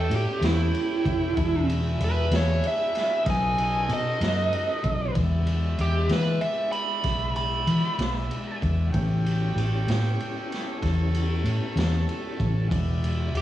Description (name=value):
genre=slow blues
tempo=64 BPM (dotted quarters)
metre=12/8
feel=straight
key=E mixolydian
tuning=A4 = 439 Hz
part: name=dark smooth lead guitar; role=melody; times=0.0-13.4 s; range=E4 to B5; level=-26 LUFS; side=right 2 dB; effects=overdrive, cassette tape
part: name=bright horn section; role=sustained chords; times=0.0-13.4 s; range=G#3 to A5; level=-34 LUFS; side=right 1 dB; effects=cassette tape
part: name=mellow tonewheel organ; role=sustained chords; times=0.0-13.4 s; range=G#3 to F#5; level=-36 LUFS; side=left 8 dB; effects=slow rotary speaker, chorus vibrato, cassette tape
part: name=vintage muted fingered electric bass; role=bass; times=0.0-13.4 s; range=E1 to E3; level=-24 LUFS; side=equal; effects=none
part: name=raw garage drum kit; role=drums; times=0.1-13.4 s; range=kick drum, ride cymbal, snare drum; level=-32 LUFS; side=equal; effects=cassette tape
room=small room ambience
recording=home recording on cassette, studio reverb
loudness=-22 LUFS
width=side -13 dB against mid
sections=0.0-5.1 A section; 5.1-13.4 B section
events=lead electric guitar solo 0.0-5.1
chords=0.0 A7; 1.4 E7; 3.3 B7; 5.1 E7; 8.9 A7; 12.7 E7